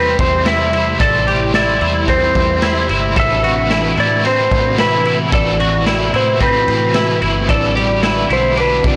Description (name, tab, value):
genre	dream pop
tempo	111 BPM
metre	4/4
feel	straight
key	unclear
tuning	A4 = 438 Hz
part	clean lap steel guitar	melody	0.0-9.0 s	B4 to E5	-19 LUFS	equal	tape echo, plate reverb
part	biting overdriven guitar	accompaniment	0.0-9.0 s	A2 to C5	-24 LUFS	equal	tremolo, lush chorus
part	hollow soft pad	sustained chords	0.0-9.0 s	C3 to G4	-25 LUFS	equal	ensemble chorus
part	semi-hollow electric guitar	arpeggios	0.0-9.0 s	C4 to A4	-21 LUFS	equal	ensemble chorus, tape echo
part	vintage muted fingered electric bass	bass	0.0-9.0 s	G1 to A2	-24 LUFS	equal	none
part	raw garage drum kit	drums	0.2-9.0 s	kick drum, ride cymbal, snare drum, tambourine	-23 LUFS	equal	none
part	glassy synth bell	texture	7.8-9.0 s	D5	-31 LUFS	equal	none
room	moderate studio reverb, RT60 0.5 s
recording	blown-out, overdriven recording, overdrive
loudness	-15 LUFS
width	mono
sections	0.0-9.0 A section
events	none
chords	0.0 Am7; 3.2 D13/A